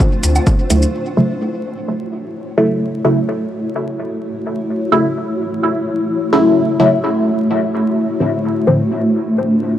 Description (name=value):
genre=dub techno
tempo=128 BPM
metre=4/4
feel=straight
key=F# minor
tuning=A4 = 440 Hz
part: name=granular cloud pad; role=sustained chords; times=0.0-9.8 s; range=A3 to C#5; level=-19 LUFS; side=equal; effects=built-in reverb, sidechain pumping
part: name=electronic kick drum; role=drums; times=0.0-0.6 s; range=none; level=-13 LUFS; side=equal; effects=none
part: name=electronic shaker and hi-hat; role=drums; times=0.0-0.9 s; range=none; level=-23 LUFS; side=equal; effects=low-pass filter on perc, low-pass filter on hats
part: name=soft dub sub bass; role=bass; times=0.2-0.9 s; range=D2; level=-14 LUFS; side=equal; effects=sidechain pumping
part: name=filtered dub chord stab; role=stabs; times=0.7-8.8 s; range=A2 to E4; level=-17 LUFS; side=equal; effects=phaser, sidechain pumping, dub echo
room=light reverb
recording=dry, gritty hardware recording, transformer saturation, vinyl crackle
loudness=-14 LUFS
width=side -11 dB against mid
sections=0.9-9.8 A section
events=filter sweep on ambient pad 0.9-9.8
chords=0.0 Dm7; 0.9 F#m7; 8.4 Dm7